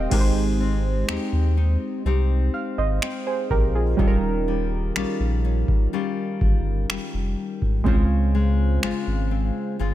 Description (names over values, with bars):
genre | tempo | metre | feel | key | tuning
contemporary R&B | 62 BPM | 4/4 | straight | Ab major | A4 = 439 Hz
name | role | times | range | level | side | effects
warm analog keys | accompaniment | 0.0-9.9 s | G3 to G5 | -26 LUFS | right 4 dB | chorus
nylon-string guitar | arpeggios | 0.0-9.9 s | Db3 to Bb4 | -29 LUFS | left 10 dB | digital delay
warm sub bass | bass | 0.0-9.9 s | Eb1 to Eb2 | -22 LUFS | equal | none
booming analog drum machine | drums | 0.1-9.1 s | crash cymbal, finger snaps, kick drum | -23 LUFS | equal | none
room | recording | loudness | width
little or no reverb | none | -20 LUFS | side -13 dB against mid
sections
0.1-9.9 A section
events
none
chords
0.1 Abmaj7; 4.0 Eb9; 7.9 Dbmaj7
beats
| 0.12 1.09 2.05 3.02 | 3.99 4.96 5.92 6.89 | 7.86 8.83 9.80